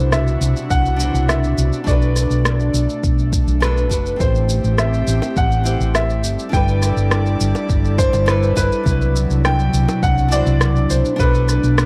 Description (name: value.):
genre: sunset chillout.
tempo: 103 BPM.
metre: 4/4.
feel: straight.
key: unclear.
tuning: A4 = 440 Hz.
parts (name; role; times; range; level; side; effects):
warm grand piano; melody; 0.0-11.9 s; B4 to G5; -25 LUFS; equal; tape echo.
nylon-string guitar; accompaniment; 0.0-11.9 s; F#3 to C5; -28 LUFS; equal; tape echo.
airy breathy pad; sustained chords; 0.0-11.9 s; B2 to D5; -27 LUFS; equal; chorus.
hollow-body short-scale fingered electric bass; bass; 0.0-11.9 s; F#1 to C2; -20 LUFS; equal; tube saturation.
electronic rim click and shaker; drums; 0.1-11.9 s; none; -26 LUFS; equal; none.
electronic kick drum; drums; 0.7-11.3 s; none; -22 LUFS; equal; none.
bongos; percussion; 5.2-10.0 s; none; -31 LUFS; equal; none.
room: light reverb.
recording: dark, warm production.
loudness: -17 LUFS.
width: mono.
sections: 0.0-11.9 A section.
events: none.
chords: 0.0 Cmaj9#11; 1.9 Bm7; 4.2 Am7; 6.2 G69; 8.9 Cmaj9#11; 11.2 Bm7.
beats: 0.12 0.71 1.29 | 1.87 2.46 3.04 3.62 | 4.20 4.79 5.37 5.95 | 6.53 7.12 7.70 8.28 | 8.86 9.45 10.03 10.61 | 11.19 11.78.